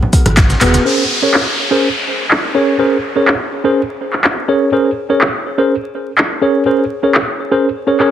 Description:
deep house; 124 BPM; 4/4; swing 53% on 16ths; Bb minor; A4 = 440 Hz
congas; percussion; 0.0-0.8 s; -18 LUFS; right 1 dB
deep house drum kit; drums; 0.1-8.1 s; handclaps, hi-hat, rim click; -15 LUFS; equal; overdrive, low-pass filter on hats, low-pass filter on snare, low-pass filter on room
electronic kick drum; drums; 0.1-0.5 s; -11 LUFS; equal; overdrive
electronic shaker and snare drum; drums; 0.1-0.8 s; -24 LUFS; left 1 dB; high-pass filter on perc, high-pass filter on snare, high-pass filter on hats, high-pass filter on room
organ-like FM bass; bass; 0.3-0.8 s; Eb1 to Ab1; -15 LUFS; equal; sidechain pumping
tine electric piano; stabs; 0.6-8.1 s; Cb4 to Db5; -14 LUFS; equal; medium stereo tremolo, sidechain pumping, low-pass filter, tape echo
downlifter; sound effects; 0.9-4.7 s; -20 LUFS; equal
moderate plate reverb, RT60 1.3 s; heavily compressed radio sound, multiband compression, vinyl crackle; -11 LUFS; side -10 dB against mid
0.9-8.1 A section
drum fill 0.6; band accent 0.6
0.0 Abm7; 0.9 Bbm9

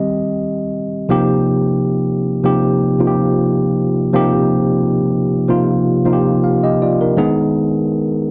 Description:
R&B; 79 BPM; 4/4; straight; Eb major; A4 = 443 Hz
tine electric piano; solo; 0.0-8.3 s; C3 to F5; -16 LUFS; equal
moderate studio reverb, RT60 0.8 s; -16 LUFS; mono
0.0-1.1 A section; 1.1-8.3 B section
tine electric piano solo 0.0-1.1
0.0 Eb6; 1.1 Ebadd9; 7.2 Abm

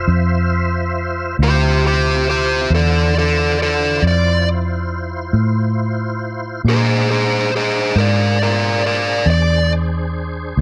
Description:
slow blues; 46 BPM (dotted quarters); 12/8; straight; D minor; A4 = 439 Hz
tonewheel organ; sustained chords; 0.0-10.6 s; D4 to E5; -28 LUFS; equal; slow rotary speaker, chorus vibrato
vintage muted fingered electric bass; bass; 0.0-10.6 s; D2 to Bb2; -20 LUFS; equal
smooth overdriven lead guitar; melody; 1.4-9.7 s; G4 to D5; -19 LUFS; equal; slapback echo
light reverb; -17 LUFS; mono
0.0-10.6 A section
0.0 Dm7; 6.6 Bb7

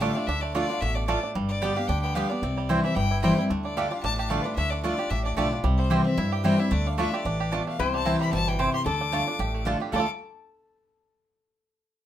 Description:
bluegrass; 224 BPM; 4/4; swing 54% on 8ths; D dorian; A4 = 440 Hz
bluegrass banjo; melody; 0.0-10.1 s; D3 to A4; -33 LUFS; right 7 dB
clear fiddle; melody; 0.0-10.1 s; B4 to D6; -31 LUFS; left 4 dB
picked steel-string acoustic guitar; accompaniment; 0.0-10.1 s; G2 to G4; -27 LUFS; left 1 dB
mandolin; stabs; 0.0-10.0 s; A3 to A5; -30 LUFS; right 5 dB
upright bass; bass; 0.0-10.1 s; G1 to G2; -30 LUFS; equal
lap resonator guitar; second line; 7.8-10.1 s; A4 to C5; -32 LUFS; left 5 dB
moderate studio reverb, RT60 0.6 s; minimal, uncompressed stereo recording; -23 LUFS; side -11 dB against mid
0.0-7.8 A section; 7.8-9.9 B section; 9.9-11.0 C section
0.0 Dm; 1.4 G; 2.4 C; 3.5 Dm; 5.6 C; 6.7 Dm; 7.8 C; 8.9 Dm

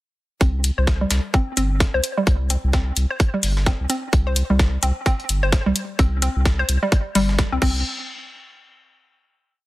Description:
minimal techno; 129 BPM; 4/4; swing 59% on 16ths; A4 = 440 Hz
hollow square pluck; riff; 0.4-7.8 s; G3 to C5; -24 LUFS; equal; chorus, sidechain pumping, dub echo
saturated sub bass; bass; 0.4-7.8 s; G1 to C2; -21 LUFS; equal; sidechain pumping
breakbeat sampler-style drum kit; drums; 0.4-7.5 s; hi-hat, snare drum; -31 LUFS; equal; sidechain pumping on hats, high-pass filter on hats, high-pass filter on snare
electronic kick drum; drums; 0.4-7.7 s; -18 LUFS; equal
garage drum kit; drums; 0.6-7.7 s; crash cymbal, hi-hat; -24 LUFS; left 2 dB
digital ambience; -18 LUFS; side -18 dB against mid
0.4-7.9 groove; 7.9-9.7 final hit
0.4 C5; 7.6 N.C.

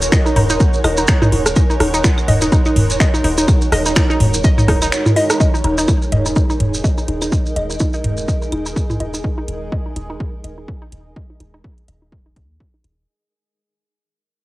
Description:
minimal techno; 125 BPM; 4/4; swing 57% on 16ths; Eb minor; A4 = 440 Hz
punchy sub bass; bass; 0.0-13.0 s; Eb1 to Eb2; -22 LUFS; equal; sidechain pumping
house drum kit; drums; 0.0-13.0 s; finger snaps, hi-hat; -23 LUFS; equal; overdrive
maracas; percussion; 0.0-9.2 s; -25 LUFS; right 1 dB
bubbling stepped-filter texture; texture; 0.0-13.1 s; Ab3 to Ab4; -32 LUFS; equal; chorus, built-in reverb, sidechain pumping, cassette tape
granular cloud pad; texture; 0.0-13.1 s; Eb4 to Eb5; -23 LUFS; right 1 dB; built-in reverb, sidechain pumping, cassette tape
hollow square pluck; riff; 0.1-12.9 s; Eb4 to Eb5; -22 LUFS; equal; chorus, sidechain pumping, cassette tape, tape echo
electronic kick drum; drums; 0.1-12.7 s; -16 LUFS; equal; overdrive
booming analog drum machine; percussion; 0.1-9.1 s; bongos, claves, rim click, toms; -18 LUFS; equal; tape echo
light reverb; home recording on cassette; -13 LUFS; side -18 dB against mid
0.0-5.4 A section; 5.4-13.1 B section
drop 0.0-5.4; fade-out on ambient pad 5.4-13.1; fade-out 5.4-13.1; filter sweep on synth arpeggio sound 5.4-13.1
0.0 Ebm

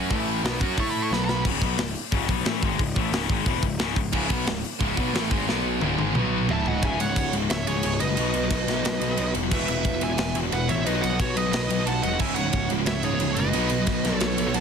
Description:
heavy metal; 179 BPM; 4/4; straight; C# minor; A4 = 439 Hz
crunchy overdriven guitar; riff; 0.0-14.6 s; C#2 to A4; -31 LUFS; left 2 dB
high-gain distorted guitar; riff; 0.0-1.5, 4.1-6.8, 12.2-14.6 s; C#2 to A4; -30 LUFS; right 13 dB; distortion
tight distorted guitar; riff; 0.0-14.6 s; C#2 to A4; -30 LUFS; left 13 dB; distortion
fuzz picked electric bass; bass; 0.0-14.6 s; C#1 to A2; -29 LUFS; equal; overdrive
tight metal drum kit; drums; 0.1-14.6 s; crash cymbal, hi-hat, kick drum, ride cymbal, snare drum, toms; -27 LUFS; right 1 dB
high-gain lead guitar; melody; 0.8-1.4, 6.5-14.6 s; C#5 to C#6; -30 LUFS; right 3 dB; distortion
high-gain lead guitar; second line; 6.5-14.6 s; F#4 to F#5; -32 LUFS; right 3 dB; distortion
small room ambience; dense, heavily limited modern master; -22 LUFS; side -6 dB against mid
0.0-1.5 A section; 1.5-6.8 B section; 6.8-14.6 C section
lead electric guitar solo 0.0-1.5; drum fill 1.1-1.5, 5.5-6.8; half time 6.8-14.6
0.1 A5; 0.4 B5; 0.8 A5; 1.1 B5; 1.5 C#m; 5.5 B5; 5.8 C#5; 6.2 B5; 6.5 C#m; 6.8 C#5; 8.2 B; 9.5 E; 10.9 B; 12.2 C#5; 13.5 B

